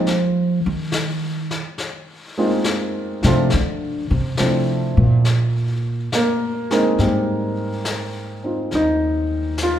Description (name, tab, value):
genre	jazz ballad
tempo	69 BPM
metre	4/4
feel	swing 68% on 8ths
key	unclear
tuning	A4 = 443 Hz
part	dark baby grand piano	accompaniment	0.0-9.8 s	F3 to Bb4	-20 LUFS	equal	none
part	upright bass	bass	0.0-9.8 s	Eb2 to F3	-20 LUFS	right 1 dB	none
part	vintage brush drum kit	drums	0.1-9.8 s	brushed snare drum, hi-hat, snare drum	-28 LUFS	left 3 dB	none
room	light reverb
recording	none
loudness	-18 LUFS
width	side -10 dB against mid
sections	0.0-7.0 A section; 7.0-9.8 B section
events	upright bass solo 0.0-7.0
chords	0.1 Ab69; 3.5 Dm9; 5.2 Eb5; 7.0 Abmaj7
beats	| 0.06 0.93 1.79 2.65 | 3.51 4.38 5.24 6.11 | 6.98 7.85 8.71 9.58